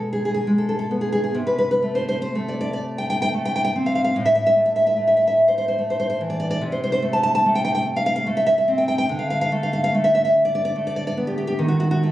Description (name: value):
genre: romantic piece for solo classical guitar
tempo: 38-50 BPM (dotted quarters)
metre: 6/8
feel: rubato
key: A minor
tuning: A4 = 439 Hz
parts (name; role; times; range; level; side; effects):
- nylon-string guitar; solo; 0.0-12.1 s; A2 to A5; -18 LUFS; equal; none
room: moderate recital hall reverb, RT60 1.4 s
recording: recorded on a phone in the room, club reverb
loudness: -18 LUFS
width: side -14 dB against mid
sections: 0.0-12.1 A section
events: none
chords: 0.0 G#m/B; 1.4 Am/C; 4.2 A5; 6.6 Am/C; 9.1 Dm6; 11.6 D#dim